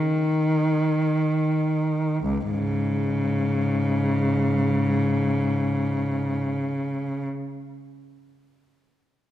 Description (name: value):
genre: classical, free, expressive piece for unaccompanied cello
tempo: free time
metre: none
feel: none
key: unclear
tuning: A4 = 440 Hz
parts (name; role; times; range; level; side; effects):
- rich cello; solo; 0.0-7.3 s; C#2 to D#3; -22 LUFS; equal; none
room: moderate scoring stage reverb, RT60 2.0 s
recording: dark, warm production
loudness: -21 LUFS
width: side -12 dB against mid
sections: 0.0-2.2 A section; 2.2-8.1 B section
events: slowing down 0.0-2.2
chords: none